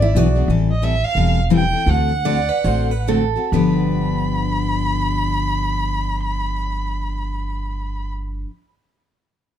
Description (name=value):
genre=acoustic string swing (jazz manouche)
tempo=126-181 BPM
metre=4/4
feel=swing 61% on 8ths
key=G mixolydian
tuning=A4 = 440 Hz
part: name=warm violin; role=melody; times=0.0-8.1 s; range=D5 to B5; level=-24 LUFS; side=right 1 dB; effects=plate reverb
part: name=picked steel-string acoustic guitar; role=second line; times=0.0-8.5 s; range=E4 to D5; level=-24 LUFS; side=right 8 dB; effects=none
part: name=picked steel-string acoustic guitar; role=accompaniment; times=0.0-8.5 s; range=G2 to A4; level=-21 LUFS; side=left 4 dB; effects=none
part: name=upright bass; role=bass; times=0.0-8.4 s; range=E1 to D2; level=-21 LUFS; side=right 1 dB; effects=none
room=moderate club reverb, RT60 0.5 s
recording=dark, warm production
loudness=-17 LUFS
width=side -10 dB against mid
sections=0.5-3.5 A section; 3.5-7.3 B section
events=slowing down 0.5-3.5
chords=0.5 Am7; 1.9 D7; 3.5 G7